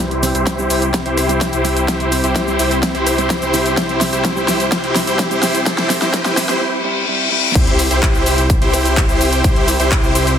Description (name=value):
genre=EDM, festival progressive house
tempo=127 BPM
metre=4/4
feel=straight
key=C major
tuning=A4 = 440 Hz
part: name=lush unison pad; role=sustained chords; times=0.0-10.4 s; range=C3 to G4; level=-25 LUFS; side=left 1 dB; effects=chorus, sidechain pumping
part: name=supersaw chords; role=riff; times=0.0-10.3 s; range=E4 to C5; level=-18 LUFS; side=equal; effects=cassette tape, sidechain pumping, low-pass filter, tape echo
part: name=wide detuned saw bass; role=bass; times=0.0-10.4 s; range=C2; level=-22 LUFS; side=equal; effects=chorus, sidechain pumping
part: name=big-room dance drum kit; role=drums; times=0.0-10.4 s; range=crash cymbal, handclaps, hi-hat, rim click, shaker, snare drum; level=-20 LUFS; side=left 1 dB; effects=overdrive, small room ambience
part: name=riser, reverse cymbal and sub drop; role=sound effects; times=2.7-9.4 s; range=none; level=-24 LUFS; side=left 4 dB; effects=none
part: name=mellow electric guitar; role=accompaniment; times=0.2-7.5 s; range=G3 to G4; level=-24 LUFS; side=right 3 dB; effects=wide subtle chorus, sidechain pumping, tape echo
part: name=electronic kick drum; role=drums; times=0.5-10.0 s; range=none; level=-17 LUFS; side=equal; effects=high-pass filter on kick, small room ambience
room=light reverb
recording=dense, heavily limited modern master, high-pass filter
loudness=-13 LUFS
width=side -8 dB against mid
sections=0.0-7.6 A section; 7.6-10.4 B section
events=build-up 0.0-7.6; drum fill 0.0-6.6; filter sweep on supersaw synth 0.0-7.6; filter sweep 0.0-7.6; reverse cymbal 6.6-7.6; drop 7.6-10.4; impact 7.6-9.4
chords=0.0 C